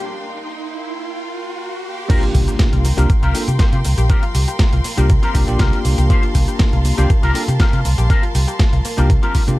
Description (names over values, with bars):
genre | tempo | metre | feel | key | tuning
nu-disco, nu disco | 120 BPM | 4/4 | straight | unclear | A4 = 440 Hz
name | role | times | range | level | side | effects
dark studio string section | sustained chords | 0.0-9.6 s | Bb3 to C6 | -29 LUFS | left 1 dB | sidechain pumping
fingered electric bass with an envelope filter | bass | 0.0-9.6 s | Bb1 to C3 | -16 LUFS | equal | high-pass filter
riser and impact | sound effects | 0.0-4.1 s | none | -28 LUFS | right 1 dB | none
bell-like tine electric piano | accompaniment | 2.1-9.6 s | Bb3 to A4 | -24 LUFS | equal | fast stereo tremolo, sidechain pumping, analog delay
analog pluck | arpeggios | 2.1-9.6 s | Bb3 to G4 | -29 LUFS | left 3 dB | chorus, cassette tape, sidechain pumping, analog delay
electric guitar with an envelope filter | riff | 2.1-9.4 s | C4 to C5 | -26 LUFS | left 3 dB | ensemble chorus
dusty soul sampler-style drum kit | drums | 2.1-9.6 s | cabasa, crash cymbal, hi-hat, snare drum | -25 LUFS | equal | overdrive
electronic kick drum | drums | 2.1-9.5 s | none | -15 LUFS | equal | overdrive
room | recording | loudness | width
digital ambience | none | -13 LUFS | side -18 dB against mid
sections
0.0-2.1 A section; 2.1-9.6 B section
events
build-up 0.0-2.1; riser 0.0-2.1; break 0.1-2.1; drop 2.1-9.6; impact 2.1-4.1; clean electric guitar fill 9.3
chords
0.0 C7sus4